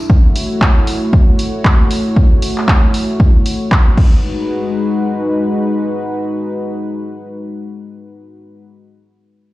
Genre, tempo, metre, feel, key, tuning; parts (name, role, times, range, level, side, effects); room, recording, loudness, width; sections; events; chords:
deep house; 116 BPM; 4/4; swing 58% on 16ths; G# phrygian; A4 = 440 Hz
warm analog pad; sustained chords; 0.0-8.6 s; G#3 to C#5; -18 LUFS; left 1 dB; chorus, sidechain pumping
electronic kick drum; drums; 0.1-4.1 s; -10 LUFS; equal; overdrive
deep house drum kit; drums; 0.4-4.1 s; crash cymbal, handclaps, hi-hat; -20 LUFS; equal; overdrive
digital ambience; played on a big sound system in a bare room, cassette tape, stone room reverb; -12 LUFS; side -18 dB against mid
0.0-4.2 A section; 4.2-8.4 B section
0.1 F#m7; 4.0 G#m7